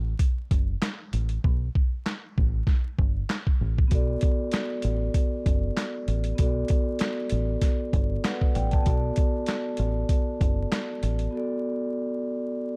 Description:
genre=hip hop, boom-bap hip-hop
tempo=97 BPM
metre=4/4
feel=swing 56% on 16ths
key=B minor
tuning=A4 = 440 Hz
part: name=deep dub fingered electric bass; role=bass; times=0.0-11.3 s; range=F#1 to B1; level=-29 LUFS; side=equal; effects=none
part: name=boom bap sampler-style drum kit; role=drums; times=0.2-11.3 s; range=handclaps, hi-hat, kick drum, snare drum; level=-27 LUFS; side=equal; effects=none
part: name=vibraphone with soft mallets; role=accompaniment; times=3.9-12.8 s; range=B3 to A5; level=-32 LUFS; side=equal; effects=cassette tape, high-pass filter, low-pass filter
room=little or no reverb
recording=dark, warm production, vinyl crackle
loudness=-26 LUFS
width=mono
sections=0.0-12.8 A section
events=break 0.0-3.9, 11.3-12.8; hi-hats muted 1.4-3.9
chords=0.0 N.C.; 1.4 Gadd9; 3.9 Bm7; 6.4 Gmaj9; 8.9 Bm7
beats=0.20 0.82 | 1.44 2.06 2.68 3.30 | 3.92 4.53 5.15 5.77 | 6.39 7.01 7.63 8.24 | 8.86 9.48 10.10 10.72 | 11.34 11.96 12.57

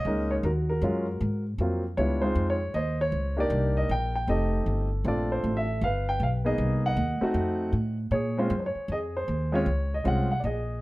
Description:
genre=jazz piano trio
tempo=156 BPM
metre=4/4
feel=swing 65% on 8ths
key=Bb minor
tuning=A4 = 439 Hz
part: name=warm grand piano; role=melody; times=0.0-10.8 s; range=Gb3 to G5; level=-28 LUFS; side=equal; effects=plate reverb
part: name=upright bass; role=bass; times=0.0-10.8 s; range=F1 to Bb2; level=-28 LUFS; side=equal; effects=none
room=light reverb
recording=close, detailed microphones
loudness=-25 LUFS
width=side -19 dB against mid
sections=0.0-10.8 A section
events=none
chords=0.4 Ebm11; 1.2 Ab13; 2.0 Dbmaj9; 3.5 Cm9; 4.3 F9; 5.0 Bbmaj9; 5.8 G; 6.6 Cm7b5; 7.4 F7b9; 8.1 Bbm9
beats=0.06 | 0.44 0.83 1.21 1.59 | 1.98 2.36 2.75 3.13 | 3.51 3.90 4.28 4.67 | 5.05 5.43 5.82 6.20 | 6.59 6.97 7.36 7.74 | 8.12 8.51 8.89 9.28 | 9.66 10.05 10.43

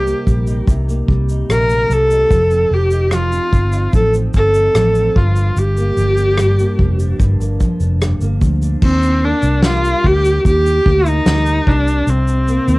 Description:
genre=acoustic pop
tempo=74 BPM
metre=4/4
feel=straight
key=unclear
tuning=A4 = 440 Hz
part: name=rich viola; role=melody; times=0.0-12.8 s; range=C4 to Bb4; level=-16 LUFS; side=equal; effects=plate reverb
part: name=fingerpicked steel-string acoustic guitar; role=accompaniment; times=0.0-12.8 s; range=G2 to G4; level=-22 LUFS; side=equal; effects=double-tracked left and right, cassette tape
part: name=vintage muted fingered electric bass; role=bass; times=0.0-12.8 s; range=F1 to Eb2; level=-16 LUFS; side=equal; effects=none
part: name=natural country drum kit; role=drums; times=0.1-12.8 s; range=crash cymbal, kick drum, rim click, shaker, snare drum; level=-17 LUFS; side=equal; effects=none
room=little or no reverb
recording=home recording on cassette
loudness=-12 LUFS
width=side -22 dB against mid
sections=0.0-8.8 A section; 8.8-12.8 B section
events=none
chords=0.0 Cm7; 2.3 F7; 5.2 Gm7; 8.8 Ebmaj7; 11.7 C7(no3)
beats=0.68 1.49 | 2.31 3.12 3.94 4.75 | 5.57 6.38 7.20 8.01 | 8.82 9.64 10.45 11.27 | 12.08

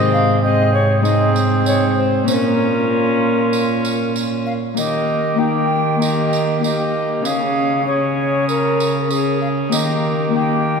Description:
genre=classical, renaissance-style consort dance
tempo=97 BPM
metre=4/4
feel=straight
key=unclear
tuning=A4 = 440 Hz
part: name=alto recorder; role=melody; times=0.0-10.8 s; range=Ab4 to G5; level=-21 LUFS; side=left 1 dB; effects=none
part: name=mellow cor anglais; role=second line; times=0.0-10.8 s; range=F4 to Ab4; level=-24 LUFS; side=right 4 dB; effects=none
part: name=Celtic harp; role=accompaniment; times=0.0-10.8 s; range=Ab2 to Ab4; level=-23 LUFS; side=left 4 dB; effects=none
part: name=rich viola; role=accompaniment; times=0.0-10.8 s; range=Bb3 to Db4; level=-22 LUFS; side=left 3 dB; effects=none
part: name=rich cello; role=bass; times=0.0-10.8 s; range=Ab2 to Eb3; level=-21 LUFS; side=right 3 dB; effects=none
part: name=tambourine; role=percussion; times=1.1-10.0 s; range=none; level=-30 LUFS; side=right 6 dB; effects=none
room=wet church reverb, RT60 3.5 s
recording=heard from further back in the room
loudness=-15 LUFS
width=side -5 dB against mid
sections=0.0-4.8 A section; 4.8-10.8 B section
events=none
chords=0.0 Ab; 2.3 Bbm; 4.8 Eb; 7.3 Db; 9.7 Eb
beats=0.43 1.05 1.66 | 2.29 2.91 3.54 4.16 | 4.78 5.40 6.02 6.64 | 7.25 7.87 8.49 9.11 | 9.72 10.34

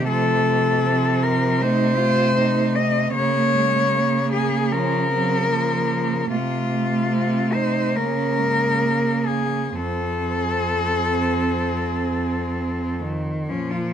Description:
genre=classical, lyrical piece for cello ensemble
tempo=61-80 BPM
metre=4/4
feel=rubato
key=unclear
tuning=A4 = 437 Hz
part: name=rich cello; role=melody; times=0.0-13.9 s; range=Db4 to Eb5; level=-22 LUFS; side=left 3 dB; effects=none
part: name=rich cello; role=second line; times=0.0-13.0 s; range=Ab3 to F4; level=-28 LUFS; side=right 11 dB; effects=none
part: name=rich cello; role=accompaniment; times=0.0-13.9 s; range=Eb3 to C4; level=-25 LUFS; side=equal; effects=none
part: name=clear cello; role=bass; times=0.0-13.9 s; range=F2 to Db3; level=-25 LUFS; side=right 2 dB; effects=none
room=little or no reverb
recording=close, detailed microphones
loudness=-19 LUFS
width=side -9 dB against mid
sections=0.0-13.5 A section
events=none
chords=0.1 F/C; 3.2 Bbm/Db; 6.3 F/C; 8.0 Bbm/Db; 9.8 F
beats=| 0.09 0.85 1.60 2.36 | 3.15 3.93 4.72 5.53 | 6.32 7.12 7.96 8.81 | 9.76 10.71 11.64 12.57 | 13.49

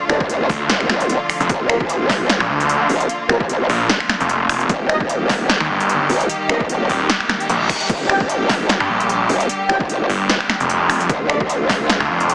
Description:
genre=heavy wobble dubstep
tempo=150 BPM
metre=4/4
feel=swing 55% on 16ths, half-time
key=G minor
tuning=A4 = 439 Hz
part: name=bright studio string section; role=sustained chords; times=0.0-12.3 s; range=D3 to G4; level=-24 LUFS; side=equal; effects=sidechain pumping
part: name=mellow brass ensemble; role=stabs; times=0.1-11.4 s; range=Bb3 to G5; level=-24 LUFS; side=equal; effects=none
part: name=growl bass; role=bass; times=0.1-12.0 s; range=Eb1 to D2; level=-18 LUFS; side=equal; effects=chorus, overdrive
part: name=big-room dance drum kit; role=drums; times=0.1-12.3 s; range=crash cymbal, finger snaps, hi-hat, snare drum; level=-20 LUFS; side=equal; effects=overdrive
part: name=electronic kick drum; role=drums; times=0.2-11.8 s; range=none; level=-24 LUFS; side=equal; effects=overdrive
part: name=snarling distorted saw bass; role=bass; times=0.5-12.3 s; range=Eb1 to G2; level=-17 LUFS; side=equal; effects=distortion, overdrive
part: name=reverse cymbal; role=sound effects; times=7.4-7.9 s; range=none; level=-26 LUFS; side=left 1 dB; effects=none
room=light reverb, digital ambience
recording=heavily compressed radio sound, multiband compression, small speaker sound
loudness=-15 LUFS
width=side -28 dB against mid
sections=0.0-12.3 A section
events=reverse cymbal 7.4-7.9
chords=0.0 Dm; 1.5 Bb; 4.7 Eb; 7.9 Gm; 11.1 Dm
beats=0.29 0.69 1.09 | 1.50 1.90 2.29 2.69 | 3.10 3.50 3.90 4.29 | 4.70 5.09 5.50 5.89 | 6.29 6.70 7.09 7.50 | 7.89 8.29 8.70 9.10 | 9.49 9.89 10.29 10.70 | 11.10 11.49 11.89 12.29

